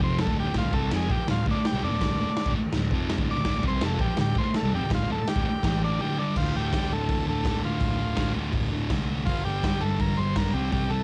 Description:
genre	garage rock duo or trio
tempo	165 BPM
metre	4/4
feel	straight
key	D minor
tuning	A4 = 440 Hz
part	combo organ	melody	0.0-11.0 s	D4 to D5	-34 LUFS	equal	cassette tape
part	thick fuzz guitar	riff	0.0-11.0 s	D2 to C4	-30 LUFS	equal	distortion
part	picked electric bass	bass	0.0-11.0 s	D1 to G2	-33 LUFS	equal	none
part	raw garage drum kit	drums	0.0-10.8 s	crash cymbal, hi-hat, kick drum, snare drum	-31 LUFS	equal	cassette tape
room	little or no reverb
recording	home recording on cassette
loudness	-26 LUFS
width	mono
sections	0.0-6.4 A section; 6.4-11.0 B section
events	transistor combo organ solo 0.0-6.4; break 6.0-6.4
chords	0.0 Dm; 5.6 A5; 6.0 D5; 6.4 Dm; 9.3 G5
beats	0.18 | 0.55 0.91 1.28 1.64 | 2.00 2.37 2.73 3.10 | 3.46 3.82 4.19 4.55 | 4.91 5.28 5.64 6.00 | 6.37 6.73 7.09 7.46 | 7.82 8.18 8.55 8.91 | 9.27 9.64 10.00 10.36 | 10.73

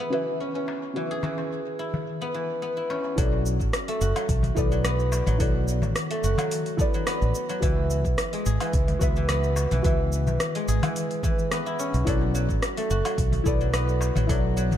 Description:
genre	organic downtempo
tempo	108 BPM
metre	4/4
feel	swing 53% on 16ths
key	unclear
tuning	A4 = 440 Hz
part	deep mellow chord stab	accompaniment	0.0-14.8 s	C#4 to E5	-32 LUFS	left 2 dB	chorus, sidechain pumping, digital delay
part	guzheng	arpeggios	0.0-14.8 s	E3 to G#4	-28 LUFS	equal	low-pass filter, digital delay
part	afro-pop drum kit	drums	0.1-14.8 s	cabasa, hi-hat, rim click, woodblock	-32 LUFS	equal	overdrive, low-pass filter on perc, low-pass filter on hats, low-pass filter on snare, low-pass filter on room
part	darbuka	percussion	0.1-14.8 s	none	-34 LUFS	left 3 dB	none
part	mellow fretless electric bass	bass	3.2-14.8 s	F#1 to C#2	-24 LUFS	equal	tube saturation, ensemble chorus
part	electronic kick drum	drums	3.2-14.4 s	none	-26 LUFS	equal	overdrive
room	light reverb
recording	dark, warm production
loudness	-22 LUFS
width	side -10 dB against mid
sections	0.0-3.2 A section; 3.2-14.8 B section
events	filter sweep on synth stab 0.0-3.2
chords	0.0 C#m7; 3.2 Bm7; 7.6 C#m7; 12.1 Bm7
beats	0.40 | 0.96 1.51 2.07 2.62 | 3.18 3.73 4.29 4.85 | 5.40 5.96 6.51 7.07 | 7.62 8.18 8.73 9.29 | 9.85 10.40 10.96 11.51 | 12.07 12.62 13.18 13.73 | 14.29

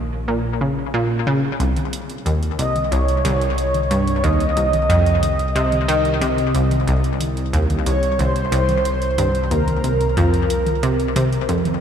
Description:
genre	ambient, sequencer-driven space music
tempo	91 BPM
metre	4/4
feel	straight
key	unclear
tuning	A4 = 440 Hz
part	fat analog bass	bass	0.0-11.8 s	Bb1 to C2	-24 LUFS	equal	tube saturation
part	analog pluck	riff	0.3-11.8 s	C2 to Eb3	-19 LUFS	equal	chorus, ping-pong delay
part	booming analog drum machine	percussion	1.6-11.8 s	hi-hat, toms	-29 LUFS	equal	ping-pong delay
part	breathy flute-like synth lead	melody	2.6-11.5 s	Bb4 to Eb5	-21 LUFS	right 1 dB	tremolo, analog chorus, ping-pong delay
room	wet lush hall reverb, RT60 3.2 s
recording	dreamy mix soaked in reverb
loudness	-16 LUFS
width	side -8 dB against mid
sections	0.0-11.8 A section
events	none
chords	0.0 Bbm; 1.6 Cm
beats	0.28 0.94 | 1.60 2.26 2.92 3.58 | 4.24 4.90 5.56 6.22 | 6.88 7.53 8.19 8.85 | 9.51 10.17 10.83 11.49

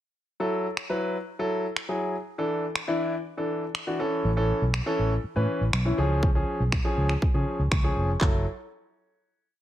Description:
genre	dance-pop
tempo	121 BPM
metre	4/4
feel	straight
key	F# minor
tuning	A4 = 440 Hz
part	clear concert grand piano	accompaniment	0.4-8.4 s	E3 to C#6	-28 LUFS	left 1 dB	sidechain pumping
part	pop drum kit	drums	0.8-8.3 s	finger snaps, handclaps, kick drum	-27 LUFS	equal	none
part	vintage muted fingered electric bass	bass	4.2-8.4 s	E#1 to C#3	-26 LUFS	equal	sidechain pumping
room	light reverb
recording	none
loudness	-24 LUFS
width	side -12 dB against mid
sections	0.3-8.2 verse; 8.2-9.6 final chord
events	grand piano fill 7.5-8.2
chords	0.3 F#m7; 2.3 Dsus2; 4.0 A; 6.0 C#; 8.2 F#m7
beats	| 0.28 0.77 1.27 1.76 | 2.26 2.76 3.25 3.75 | 4.25 4.74 5.24 5.73 | 6.23 6.72 7.22 7.72 | 8.21

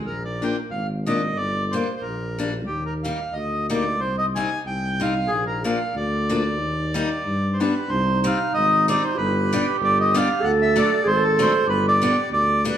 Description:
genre	alpine folk, alpine dance band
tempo	93 BPM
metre	2/4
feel	swing 55% on 8ths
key	Eb major, C harmonic minor from 7.9 s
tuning	A4 = 440 Hz
part	mellow tuba	bass	0.0-12.7 s	G1 to G2	-26 LUFS	equal	none
part	accordion	melody	0.1-12.8 s	G4 to Ab5	-23 LUFS	equal	none
part	picked steel-string acoustic guitar	accompaniment	0.4-12.8 s	F3 to Eb4	-26 LUFS	left 2 dB	none
part	dark clarinet	second line	7.9-12.6 s	Eb4 to A4	-23 LUFS	right 3 dB	none
room	wet large studio reverb, RT60 1.5 s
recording	band playing live in one room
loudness	-19 LUFS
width	side -10 dB against mid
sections	0.0-7.9 A section; 7.9-12.8 B section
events	none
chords	0.1 Bb; 1.4 Gm; 2.7 Eb; 4.0 Cm; 5.3 Bb; 6.6 Eb; 7.2 G; 7.9 Cm; 9.2 G; 10.4 D; 11.7 G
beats	| 0.07 0.72 | 1.37 2.02 | 2.68 3.34 | 4.00 4.64 | 5.29 5.94 | 6.59 7.24 | 7.89 8.54 | 9.18 9.81 | 10.43 11.05 | 11.68 12.31

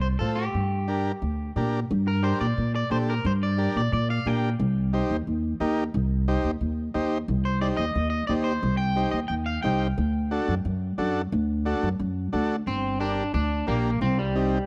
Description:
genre	latin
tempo	178 BPM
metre	4/4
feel	straight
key	G harmonic minor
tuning	A4 = 440 Hz
part	electric guitar at the edge of break-up	melody	0.0-4.5, 7.5-9.9, 12.7-14.7 s	G3 to G5	-32 LUFS	equal	spring reverb
part	upright bass	bass	0.0-14.5 s	G1 to Bb2	-28 LUFS	equal	none
part	combo organ	accompaniment	0.2-14.6 s	C4 to C5	-31 LUFS	equal	none
room	small room ambience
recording	dry, close 1970s-style studio recording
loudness	-26 LUFS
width	mono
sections	0.0-1.9 A section; 1.9-12.7 B section; 12.7-14.7 A section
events	none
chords	0.0 F; 0.5 Gm; 4.6 Cm; 10.0 D; 12.7 Gm; 14.0 Cm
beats	0.21 | 0.55 0.89 1.22 1.56 | 1.90 2.23 2.57 2.91 | 3.25 3.58 3.92 4.25 | 4.59 4.93 5.26 5.60 | 5.94 6.28 6.61 6.95 | 7.28 7.62 7.96 8.29 | 8.63 8.97 9.30 9.64 | 9.97 10.31 10.65 10.98 | 11.32 11.65 11.99 12.33 | 12.66 13.00 13.34 13.67 | 14.01 14.34

